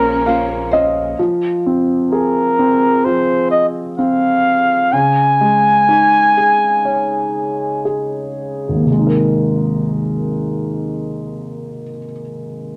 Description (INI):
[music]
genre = pop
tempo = 58-65 BPM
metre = 4/4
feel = straight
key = Ab major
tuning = A4 = 440 Hz
[part]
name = warm flugelhorn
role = melody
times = 0.0-7.9 s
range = Bb4 to Ab5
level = -16 LUFS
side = equal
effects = none
[part]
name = dark baby grand piano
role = accompaniment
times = 0.0-12.8 s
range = Ab1 to F5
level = -19 LUFS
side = equal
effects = none
[part]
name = warm studio string section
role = sustained chords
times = 0.0-1.2 s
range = Db3 to Db4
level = -29 LUFS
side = equal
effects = none
[part]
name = nylon-string guitar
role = arpeggios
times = 0.0-1.2 s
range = Bb3 to C5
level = -25 LUFS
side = equal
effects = none
[part]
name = sub bass with octave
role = bass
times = 0.0-1.1 s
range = Bb1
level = -32 LUFS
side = equal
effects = none
[sound]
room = moderate studio reverb, RT60 0.7 s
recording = none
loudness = -15 LUFS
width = mono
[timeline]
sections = 0.0-8.9 A section; 8.9-12.8 B section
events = grand piano fill 0.0-1.2; slowing down 1.2-8.9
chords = 0.0 Bbmadd9; 1.2 Fm; 4.9 Dbsus2; 8.9 Abadd9